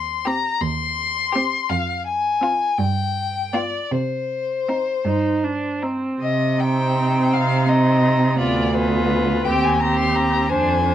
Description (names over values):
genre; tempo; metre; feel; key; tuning
classical, slow romantic movement for string quartet; 50-58 BPM (dotted quarters); 6/8; rubato; C minor; A4 = 440 Hz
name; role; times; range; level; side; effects
clear violin; melody; 0.0-10.9 s; B4 to C6; -22 LUFS; left 5 dB; none
rich cello; bass; 0.0-10.9 s; D2 to C3; -22 LUFS; right 3 dB; none
warm violin; second line; 0.3-10.9 s; Eb4 to C5; -24 LUFS; equal; none
rich viola; accompaniment; 0.3-10.9 s; B3 to Eb4; -24 LUFS; right 2 dB; none
room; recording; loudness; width
light reverb; worn, warbling old tape, cassette tape, warbly pitch drift; -18 LUFS; side -11 dB against mid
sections
0.0-6.2 A section; 6.2-10.9 A section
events
none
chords
0.0 Cm/Eb; 1.7 Fm; 2.8 G7; 3.9 Cm; 8.4 Bdim/D; 9.5 Cm/Eb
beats
0.61 | 1.69 2.78 | 3.90 5.05 | 6.22 7.33 | 8.39 9.46 | 10.51